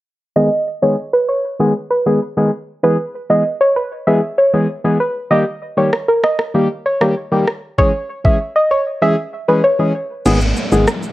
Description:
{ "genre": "dancehall", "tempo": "97 BPM", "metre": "4/4", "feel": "straight", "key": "G# harmonic minor", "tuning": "A4 = 438 Hz", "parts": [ { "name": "soft round pluck", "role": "melody", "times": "0.4-10.1 s", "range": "A#4 to E5", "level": "-16 LUFS", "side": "right 1 dB", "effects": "chorus, low-pass filter, analog delay" }, { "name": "percussive organ stab", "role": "accompaniment", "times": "0.4-10.9 s", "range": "D#3 to G#4", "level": "-15 LUFS", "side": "left 1 dB", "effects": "chorus, low-pass filter, cassette tape" }, { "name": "island pop drum kit", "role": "drums", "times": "5.9-11.1 s", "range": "crash cymbal, kick drum, rim click, shaker", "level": "-18 LUFS", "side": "equal", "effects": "cassette tape" }, { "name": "woody FM bass", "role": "bass", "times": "10.3-10.9 s", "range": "G#1", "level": "-15 LUFS", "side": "equal", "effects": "none" }, { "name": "downlifter", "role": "sound effects", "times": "10.3-11.1 s", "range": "none", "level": "-21 LUFS", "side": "right 1 dB", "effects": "none" } ], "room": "moderate studio reverb, RT60 0.7 s", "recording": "home recording on cassette", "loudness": "-14 LUFS", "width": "side -16 dB against mid", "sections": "0.4-10.3 A section", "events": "filter sweep 0.4-10.3; kick muted 10.3-11.1", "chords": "0.4 G#m; 2.8 E; 5.3 D#; 7.8 C#m; 10.3 G#m" }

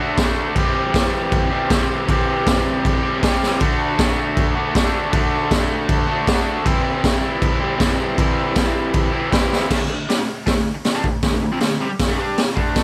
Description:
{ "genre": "garage rock duo or trio", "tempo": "157 BPM", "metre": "4/4", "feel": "straight", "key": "D mixolydian", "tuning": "A4 = 442 Hz", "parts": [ { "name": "raw garage guitar", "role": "riff", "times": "0.0-12.8 s", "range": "C3 to G4", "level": "-23 LUFS", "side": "equal", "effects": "overdrive" }, { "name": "raw garage drum kit", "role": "drums", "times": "0.2-12.8 s", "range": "crash cymbal, hi-hat, kick drum, snare drum", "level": "-21 LUFS", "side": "equal", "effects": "none" } ], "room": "moderate club reverb, RT60 0.9 s", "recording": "none", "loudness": "-19 LUFS", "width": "mono", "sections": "0.0-9.7 A section; 9.7-12.8 B section", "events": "drum fill 3.4, 9.5", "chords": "0.0 D; 0.6 C; 3.6 D; 6.7 C; 9.7 D5" }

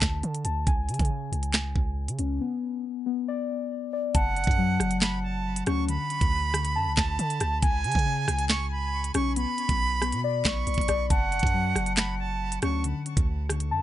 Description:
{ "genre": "hip hop, drill", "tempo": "138 BPM", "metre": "4/4", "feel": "half-time", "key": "F# minor", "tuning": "A4 = 441 Hz", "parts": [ { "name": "muted felt-like synth keys", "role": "arpeggios", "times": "0.0-13.8 s", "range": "C#3 to A5", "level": "-30 LUFS", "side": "left 5 dB", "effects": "chorus, low-pass filter, ping-pong delay" }, { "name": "long sustained 808-style bass", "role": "bass", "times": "0.0-13.8 s", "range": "F#1 to D3", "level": "-29 LUFS", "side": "right 1 dB", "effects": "none" }, { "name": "drill drum kit", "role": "drums", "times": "0.0-13.7 s", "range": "handclaps, hi-hat, kick drum, rim click, snare drum", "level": "-26 LUFS", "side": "right 1 dB", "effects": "none" }, { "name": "bright reedy silver concert flute", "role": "second line", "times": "4.1-12.8 s", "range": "F#5 to C#6", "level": "-30 LUFS", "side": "right 4 dB", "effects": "ping-pong delay" } ], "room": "light reverb", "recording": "nothing above 10.7 kHz", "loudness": "-24 LUFS", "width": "side -13 dB against mid", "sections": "0.0-4.1 A section; 4.1-13.8 B section", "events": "break 2.4-4.1", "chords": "0.0 D5; 0.7 C#5; 2.4 Bm; 4.1 F#m; 5.9 D5; 7.6 C#5; 9.4 Bmadd9; 11.1 F#m; 12.8 N.C." }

